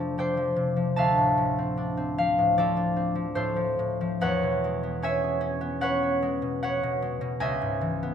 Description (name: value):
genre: classical, solo harp piece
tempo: 75 BPM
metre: 4/4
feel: rubato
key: unclear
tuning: A4 = 438 Hz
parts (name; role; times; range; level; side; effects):
- concert harp; solo; 0.0-8.1 s; C#2 to A5; -24 LUFS; equal; none
room: moderate recital hall reverb, RT60 1.6 s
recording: none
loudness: -24 LUFS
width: side -8 dB against mid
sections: 0.0-8.1 A section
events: none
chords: 0.0 F69; 1.0 Dm9; 4.2 E69; 7.5 C#m9